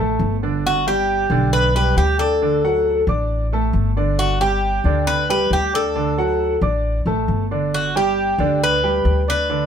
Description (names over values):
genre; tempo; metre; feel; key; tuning
latin, Cuban son and guajira; 136 BPM; 4/4; straight; G major; A4 = 441 Hz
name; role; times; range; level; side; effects
clear baby grand piano; arpeggios; 0.0-9.7 s; D3 to D6; -21 LUFS; right 3 dB; none
upright bass; bass; 0.0-9.7 s; G1 to D2; -22 LUFS; left 1 dB; none
Cuban tres; melody; 0.7-9.7 s; F#4 to B4; -19 LUFS; left 1 dB; none
room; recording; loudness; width
light reverb; none; -16 LUFS; side -8 dB against mid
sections
0.0-9.7 A section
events
none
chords
0.0 D5; 0.6 G; 2.4 D; 4.2 G5; 6.0 D; 7.7 G